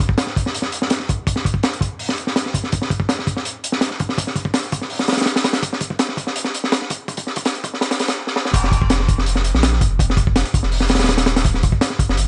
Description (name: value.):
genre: drum and bass, jungle.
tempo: 165 BPM.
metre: 4/4.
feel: straight.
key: unclear.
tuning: A4 = 440 Hz.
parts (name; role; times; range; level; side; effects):
saturated sub bass; bass; 0.0-12.3 s; Eb1 to Eb2; -23 LUFS; equal; tube saturation, high-pass filter.
crunchy breakbeat drum kit; drums; 0.0-12.3 s; crash cymbal, hi-hat, kick drum, snare drum; -20 LUFS; equal; none.
room: little or no reverb.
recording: high-pass filter, nothing above 10.4 kHz.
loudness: -20 LUFS.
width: mono.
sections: 0.0-8.5 A section; 8.5-12.3 B section.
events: build-up 0.0-8.5; filter sweep 0.0-8.5; drum fill 8.3; drop 8.5-12.3.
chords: none.